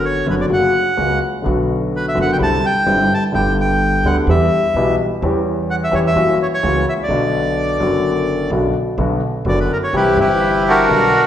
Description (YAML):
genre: tango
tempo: 127 BPM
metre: 4/4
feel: rubato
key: B harmonic minor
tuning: A4 = 440 Hz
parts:
  - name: bandoneon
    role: melody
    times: 0.0-11.3 s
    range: D4 to A5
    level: -17 LUFS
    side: equal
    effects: none
  - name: warm concert grand piano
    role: accompaniment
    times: 0.0-11.1 s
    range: F#1 to G4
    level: -17 LUFS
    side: left 2 dB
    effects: none
  - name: upright bass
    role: bass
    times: 0.0-11.1 s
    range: F#1 to E2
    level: -24 LUFS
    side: right 2 dB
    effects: none
room: wet recital hall reverb, RT60 1.3 s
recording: recorded in a church or concert hall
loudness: -14 LUFS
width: side -10 dB against mid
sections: 0.0-9.0 A section; 9.0-11.3 A section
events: none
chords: 0.0 Bm/F#; 0.5 F#; 1.5 Bm; 2.4 Cadd9; 3.3 G; 4.3 Em; 5.2 C#dim/E; 6.2 F#7; 7.1 Bm; 9.9 C